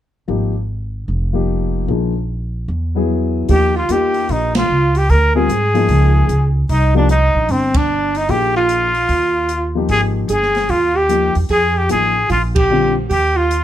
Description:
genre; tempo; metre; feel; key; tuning
jazz, small-group swing and bop; 150 BPM; 4/4; swing 64% on 8ths; Eb major; A4 = 440 Hz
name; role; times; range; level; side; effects
warm concert grand piano; accompaniment; 0.3-12.9 s; D3 to Bb4; -19 LUFS; left 5 dB; none
upright bass; bass; 0.3-13.6 s; F1 to Ab2; -18 LUFS; right 1 dB; none
trumpet with straight mute; melody; 3.5-13.6 s; C4 to Bb4; -17 LUFS; left 1 dB; none
warm alto saxophone; second line; 3.5-13.6 s; C4 to Bb4; -21 LUFS; right 4 dB; none
open jazz drum kit; drums; 3.5-13.6 s; hi-hat, kick drum, ride cymbal, snare drum; -23 LUFS; equal; none
room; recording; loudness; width
light reverb; none; -13 LUFS; side -11 dB against mid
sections
0.3-3.5 A section; 3.5-13.6 B section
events
band accent 4.5, 7.7, 12.5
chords
0.3 Ab5; 1.1 Fsus2; 1.9 Bb7sus4; 2.7 Eadd9; 3.5 Ebadd9; 5.1 Dm7b5; 5.9 Dbadd9; 6.7 Cm9; 8.3 Bb5; 9.1 Ebadd9; 9.9 Ab5; 11.5 Fm7; 12.3 Bb; 13.1 Ebadd9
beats
| 0.29 0.69 1.09 1.49 | 1.89 2.29 2.69 3.09 | 3.49 3.89 4.29 4.69 | 5.09 5.49 5.89 6.29 | 6.69 7.09 7.49 7.89 | 8.29 8.69 9.09 9.49 | 9.89 10.29 10.70 11.10 | 11.50 11.90 12.30 12.70 | 13.10 13.51

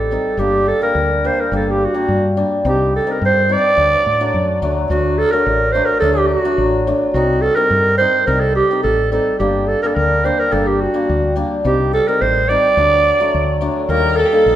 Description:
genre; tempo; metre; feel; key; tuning
klezmer; 107 BPM; 2/4; straight; D phrygian dominant; A4 = 438 Hz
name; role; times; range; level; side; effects
growling clarinet; melody; 0.0-14.6 s; F#4 to D5; -15 LUFS; right 2 dB; none
hammered dulcimer; accompaniment; 0.0-14.6 s; F#3 to Eb4; -20 LUFS; left 2 dB; none
woody fretless electric bass; bass; 0.0-14.6 s; G1 to A2; -21 LUFS; left 1 dB; none
dark violin; second line; 13.9-14.6 s; G4 to Bb4; -17 LUFS; left 7 dB; none
room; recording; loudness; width
wet stone room reverb, RT60 1.3 s; band playing live in one room; -13 LUFS; side -12 dB against mid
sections
0.0-4.9 A section; 4.9-13.9 A section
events
none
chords
0.4 Gm; 2.6 Cm; 3.8 D; 7.2 Cm; 9.4 Gm; 11.7 Cm; 12.8 D; 13.9 Eb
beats
| 0.38 0.95 | 1.51 2.08 | 2.64 3.21 | 3.77 4.34 | 4.90 5.46 | 6.03 6.59 | 7.15 7.71 | 8.28 8.84 | 9.40 9.96 | 10.53 11.09 | 11.65 12.21 | 12.78 13.34 | 13.90 14.47

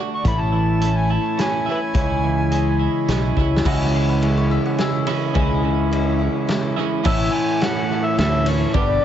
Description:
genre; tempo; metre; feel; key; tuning
folk rock and heartland rock; 106 BPM; 3/4; straight; unclear; A4 = 440 Hz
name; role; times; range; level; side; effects
picked twelve-string acoustic guitar; accompaniment; 0.0-9.0 s; G2 to G4; -24 LUFS; left 7 dB; tape echo
accordion; sustained chords; 0.0-9.0 s; C#4 to D5; -33 LUFS; right 2 dB; none
twelve-string electric guitar; riff; 0.0-9.0 s; G2 to G4; -24 LUFS; right 10 dB; tape echo
overdriven harmonica; melody; 0.1-2.8, 7.1-9.0 s; A4 to C#6; -24 LUFS; equal; tape echo
fingered electric bass; bass; 0.2-9.0 s; G1 to D2; -20 LUFS; equal; none
loose indie drum kit; drums; 0.2-8.9 s; crash cymbal, hi-hat, kick drum, ride cymbal, snare drum; -24 LUFS; equal; tape echo
mandolin; second line; 3.7-5.1 s; F#4 to F#5; -31 LUFS; left 5 dB; none
room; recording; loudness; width
studio ambience; echo-heavy mix, nothing above 7.9 kHz; -17 LUFS; side -10 dB against mid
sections
0.0-3.6 A section; 3.6-7.0 B section; 7.0-9.0 C section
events
harmonica solo 0.0-3.6; drum fill 3.4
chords
0.3 A; 2.0 C#m; 7.0 A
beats
| 0.25 0.82 1.39 | 1.95 2.52 3.08 | 3.65 4.22 4.78 | 5.35 5.92 6.48 | 7.05 7.61 8.18 | 8.75

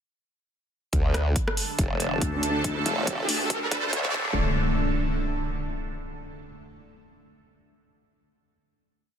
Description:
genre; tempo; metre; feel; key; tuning
heavy wobble dubstep; 140 BPM; 4/4; swing 55% on 16ths, half-time; D minor; A4 = 438 Hz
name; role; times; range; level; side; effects
evolving wavetable pad; sustained chords; 1.6-4.3 s; D3 to A5; -30 LUFS; right 1 dB; phaser, built-in reverb, sidechain pumping
formant-sweep wobble bass; bass; 0.9-4.3 s; D1 to D2; -26 LUFS; equal; chorus, overdrive
dubstep drum kit; drums; 0.9-4.0 s; hi-hat, rim click; -29 LUFS; right 1 dB; overdrive
electronic kick drum; drums; 0.9-4.2 s; none; -29 LUFS; equal; overdrive
riser and impact; sound effects; 1.7-5.9 s; none; -30 LUFS; equal; none
vowel-sweep wobble bass; bass; 2.2-3.9 s; D2; -30 LUFS; left 1 dB; chorus, overdrive
room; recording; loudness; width
digital ambience; dense, heavily limited modern master, high-pass filter; -24 LUFS; side -8 dB against mid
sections
0.9-4.4 build; 4.4-6.1 final hit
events
build-up 0.9-4.4; filter sweep 0.9-4.4; riser 1.7-4.4; drum fill 2.6-4.4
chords
0.9 D5; 4.4 N.C.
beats
| 0.93 1.36 1.79 2.22 | 2.64 3.07 3.50 3.93 | 4.36 4.79 5.22 5.64

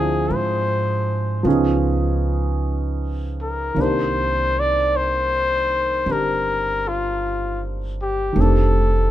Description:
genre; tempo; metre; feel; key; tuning
jazz ballad; 52 BPM; 4/4; swing 66% on 8ths; unclear; A4 = 440 Hz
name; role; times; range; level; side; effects
breathy trumpet; melody; 0.0-9.1 s; F4 to D5; -21 LUFS; left 2 dB; none
warm baby grand piano; accompaniment; 0.0-9.1 s; Eb3 to Ab4; -24 LUFS; right 1 dB; none
upright bass; bass; 0.0-9.1 s; F1 to Ab2; -22 LUFS; right 1 dB; none
room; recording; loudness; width
light reverb; minimal, uncompressed stereo recording; -18 LUFS; side -13 dB against mid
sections
0.0-9.1 A section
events
none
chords
0.0 Dm7b5; 1.5 Db9; 3.8 Cm9; 8.4 F13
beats
0.30 1.45 2.61 | 3.76 4.92 6.07 7.22 | 8.36

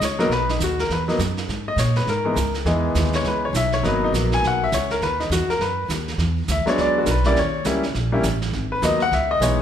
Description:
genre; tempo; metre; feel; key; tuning
jazz piano trio; 204 BPM; 4/4; swing 61% on 8ths; G# minor; A4 = 440 Hz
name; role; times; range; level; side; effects
clear baby grand piano; melody; 0.0-9.6 s; E3 to G#5; -21 LUFS; left 2 dB; none
upright bass; bass; 0.0-9.6 s; G#1 to A#2; -23 LUFS; right 1 dB; none
vintage brush drum kit; drums; 0.0-9.6 s; brushed snare drum, hi-hat, snare drum; -29 LUFS; right 5 dB; none
room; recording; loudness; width
light reverb; none; -19 LUFS; side -9 dB against mid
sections
0.0-9.6 A section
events
grand piano solo 0.0-9.6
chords
0.0 G#m7 (rootless); 1.5 C#m7; 3.8 G#m7; 6.2 E7; 7.4 D#7b9; 8.5 G#m7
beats
0.01 | 0.30 0.60 0.89 1.19 | 1.48 1.78 2.07 2.37 | 2.66 2.96 3.25 3.54 | 3.84 4.13 4.43 4.72 | 5.02 5.31 5.60 5.90 | 6.19 6.49 6.78 7.07 | 7.37 7.66 7.95 8.24 | 8.54 8.83 9.12 9.41

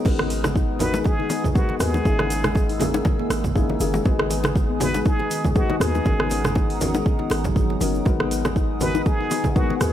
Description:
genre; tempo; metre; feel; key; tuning
afro house; 120 BPM; 4/4; swing 56% on 16ths; G# minor; A4 = 444 Hz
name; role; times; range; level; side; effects
dark analog pad; sustained chords; 0.0-9.9 s; B3 to E6; -33 LUFS; equal; chorus, sidechain pumping
handpan; arpeggios; 0.0-9.8 s; D#3 to G#4; -27 LUFS; left 4 dB; sidechain pumping, tape echo
felt-muted upright piano; stabs; 0.0-9.9 s; A#3 to A#4; -29 LUFS; left 5 dB; sidechain pumping, tape echo
congas; percussion; 0.0-9.8 s; none; -31 LUFS; right 4 dB; none
warm 808-style bass; bass; 0.1-9.9 s; F#1 to D#2; -27 LUFS; right 1 dB; sidechain pumping
deep house drum kit; drums; 0.1-9.9 s; crash cymbal, hi-hat, rim click, toms; -28 LUFS; right 2 dB; studio reverb
electronic kick drum; drums; 0.1-9.7 s; none; -21 LUFS; right 1 dB; studio reverb
egg shaker; percussion; 0.1-9.9 s; none; -39 LUFS; equal; none
bongos; percussion; 0.2-9.8 s; none; -30 LUFS; left 3 dB; none
trumpet with plunger mute; melody; 0.8-9.9 s; F#4 to B4; -29 LUFS; right 2 dB; tape echo
room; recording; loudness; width
studio reverb; none; -19 LUFS; side -11 dB against mid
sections
0.0-9.9 A section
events
none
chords
0.1 G#m7; 2.1 F#9/G#; 4.1 G#m7; 6.1 Bmaj7/G#; 8.1 G#m7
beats
| 0.06 0.56 1.06 1.56 | 2.06 2.56 3.06 3.56 | 4.06 4.56 5.06 5.56 | 6.06 6.56 7.06 7.56 | 8.06 8.56 9.06 9.56

